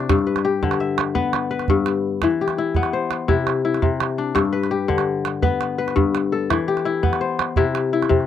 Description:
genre	west african traditional, West African string and xylophone music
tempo	112 BPM (dotted quarters)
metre	12/8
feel	straight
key	G major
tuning	A4 = 440 Hz
part	kora	arpeggios	0.0-8.3 s	G2 to E5	-19 LUFS	left 6 dB	none
part	calabash	percussion	0.0-8.2 s	none	-23 LUFS	right 5 dB	none
room	light reverb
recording	dry, close 1970s-style studio recording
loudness	-18 LUFS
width	side -10 dB against mid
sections	0.0-8.3 A section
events	none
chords	0.1 G; 2.2 Em; 3.3 C; 4.4 G; 6.5 Em; 7.6 C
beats	| 0.09 0.63 1.16 1.69 | 2.23 2.76 3.29 3.83 | 4.36 4.89 5.43 5.96 | 6.50 7.03 7.57 8.10

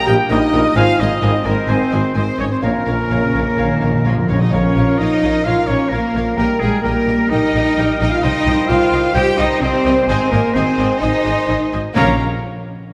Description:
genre	cinematic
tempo	129 BPM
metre	4/4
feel	straight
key	Bb dorian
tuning	A4 = 440 Hz
part	hollow concert flute	second line	0.0-12.2 s	F5 to Ab5	-30 LUFS	equal	none
part	rich symphonic violin section	second line	0.0-12.2 s	Bb4 to Ab5	-33 LUFS	equal	none
part	warm trombone section	sustained chords	0.0-12.2 s	Eb3 to Db4	-30 LUFS	equal	none
part	warm trumpet	stabs	0.0-12.2 s	Bb4 to G5	-27 LUFS	equal	none
part	rich symphonic violin section	melody	0.1-12.2 s	Ab4 to Bb5	-28 LUFS	equal	none
part	clear oboe	second line	0.1-12.2 s	Ab4 to G5	-28 LUFS	equal	none
part	rich symphonic viola section	accompaniment	0.1-12.2 s	Db4 to Eb5	-31 LUFS	equal	none
part	mellow French horn section	sustained chords	0.1-12.1 s	Ab3 to G4	-22 LUFS	equal	none
part	clear tuba	bass	0.1-4.4 s	Ab1 to Bb1	-27 LUFS	equal	none
part	rich symphonic cello section	bass	0.1-12.2 s	Ab2 to G4	-24 LUFS	equal	none
part	warm symphonic double bass section	bass	0.1-12.2 s	Ab1 to C2	-24 LUFS	equal	none
part	mellow clarinet	second line	0.8-12.1 s	Bb4 to Db5	-30 LUFS	equal	none
part	timpani	percussion	2.6-5.2, 12.0-12.2 s	Bb2	-23 LUFS	equal	none
room	wet scoring stage reverb, RT60 2.0 s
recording	none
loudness	-16 LUFS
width	mono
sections	0.0-4.5 A section; 4.5-12.0 B section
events	timpani fill 2.6-4.5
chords	0.0 Eb/Bb; 0.8 Ab; 2.6 Bbm; 6.4 Eb/Bb; 8.2 Cm; 10.1 Ab; 12.0 Bbm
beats	0.31 | 0.77 1.23 1.70 2.16 | 2.63 3.12 3.59 4.06 | 4.54 5.00 5.47 5.92 | 6.38 6.84 7.31 7.77 | 8.23 8.69 9.15 9.62 | 10.09 10.55 11.01 11.48 | 11.96

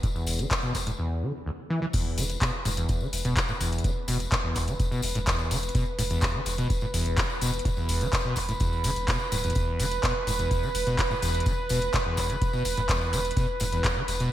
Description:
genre	acid house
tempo	126 BPM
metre	4/4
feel	straight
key	unclear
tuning	A4 = 440 Hz
part	warm analog pad	sustained chords	0.0-14.3 s	B4	-33 LUFS	right 3 dB	chorus, sidechain pumping
part	acid bass, saw	riff	0.0-14.3 s	D2 to E3	-30 LUFS	equal	overdrive, lush chorus, cassette tape, sidechain pumping, digital delay
part	booming analog drum machine	drums	0.0-14.3 s	crash cymbal, handclaps, hi-hat	-31 LUFS	left 1 dB	gated reverb
part	electronic kick drum	drums	0.0-13.9 s	none	-28 LUFS	equal	none
part	tambourine	percussion	0.0-14.3 s	none	-37 LUFS	left 4 dB	none
part	saturated sub bass	bass	0.3-14.3 s	D1 to E1	-33 LUFS	equal	tube saturation, sidechain pumping
room	moderate lush hall reverb, RT60 1.8 s, digital ambience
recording	bright 1980s-style digital production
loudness	-24 LUFS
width	side -13 dB against mid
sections	0.0-1.9 A section; 1.9-14.3 B section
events	break 1.0-1.9; drop 1.9-14.3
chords	0.0 E5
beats	| 0.03 0.51 0.99 1.46 | 1.94 2.42 2.89 3.37 | 3.84 4.32 4.80 5.27 | 5.75 6.22 6.70 7.18 | 7.65 8.13 8.61 9.08 | 9.56 10.03 10.51 10.99 | 11.46 11.94 12.41 12.89 | 13.37 13.84 14.32

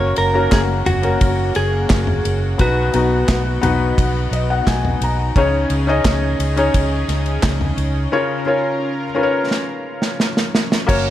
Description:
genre	piano-driven pop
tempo	87 BPM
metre	4/4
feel	straight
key	unclear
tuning	A4 = 440 Hz
part	direct-recorded clean electric guitar	melody	0.0-3.6 s	F#4 to C#5	-21 LUFS	right 1 dB	ping-pong delay
part	felt-muted upright piano	accompaniment	0.0-11.1 s	B2 to A#5	-20 LUFS	left 3 dB	none
part	lush unison pad	sustained chords	0.0-10.9 s	C#3 to A#4	-27 LUFS	right 1 dB	chorus
part	vintage muted fingered electric bass	bass	0.0-11.1 s	F#1 to C#2	-20 LUFS	equal	none
part	modern studio drum kit	drums	0.2-11.0 s	crash cymbal, handclaps, kick drum, ride cymbal, snare drum, toms	-20 LUFS	equal	none
room	moderate large studio reverb, RT60 1.3 s, studio ambience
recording	none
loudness	-15 LUFS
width	side -12 dB against mid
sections	0.0-10.9 A section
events	felt piano fill 4.0-5.4; drum fill 9.5-10.9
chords	0.0 F#; 2.6 B; 5.4 C#sus2; 8.1 A#m/C#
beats	0.53 1.22 1.91 | 2.60 3.29 3.98 4.67 | 5.36 6.05 6.75 7.43 | 8.13 8.82 9.51 10.20 | 10.88

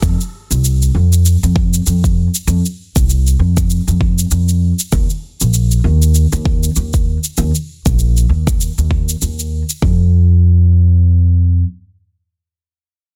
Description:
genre	organic downtempo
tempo	98 BPM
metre	4/4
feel	swing 58% on 16ths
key	unclear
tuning	A4 = 441 Hz
part	upright bass	bass	0.0-11.6 s	Bb1 to F2	-14 LUFS	equal	none
part	electronic kick drum	drums	0.0-10.0 s	none	-18 LUFS	equal	studio reverb
part	shaker	drums	0.0-9.8 s	none	-25 LUFS	equal	studio reverb, soft clipping on snare
room	little or no reverb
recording	dense, heavily limited modern master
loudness	-14 LUFS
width	mono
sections	0.0-9.8 A section; 9.8-12.3 B section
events	none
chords	none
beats	| 0.03 0.64 1.25 1.86 | 2.48 3.09 3.70 4.31 | 4.92 5.54 6.15 6.76 | 7.37 7.99 8.60 9.21 | 9.82 10.43 11.05

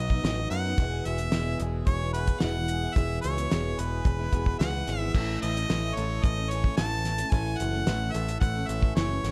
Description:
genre	folk rock and heartland rock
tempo	110 BPM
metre	4/4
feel	straight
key	A lydian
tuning	A4 = 440 Hz
part	clear harmonica	melody	0.0-9.3 s	B4 to A5	-35 LUFS	equal	digital delay
part	picked steel-string acoustic guitar	accompaniment	0.0-9.3 s	E2 to A4	-39 LUFS	equal	none
part	electric guitar through a small old amp	riff	0.0-9.3 s	E2 to A4	-39 LUFS	equal	subtle chorus
part	picked electric bass	bass	0.0-9.3 s	E1 to F#2	-33 LUFS	equal	none
part	cloth-damped thuddy drum kit	drums	0.1-9.3 s	crash cymbal, hi-hat, kick drum, snare drum	-30 LUFS	equal	none
room	light reverb, small room reverb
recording	dark, warm production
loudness	-28 LUFS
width	mono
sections	0.0-5.1 A section; 5.1-9.3 A section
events	none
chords	0.0 B; 0.8 E; 5.1 A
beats	0.24 | 0.78 1.33 1.87 2.42 | 2.96 3.51 4.05 4.60 | 5.14 5.69 6.23 6.78 | 7.32 7.87 8.41 8.96

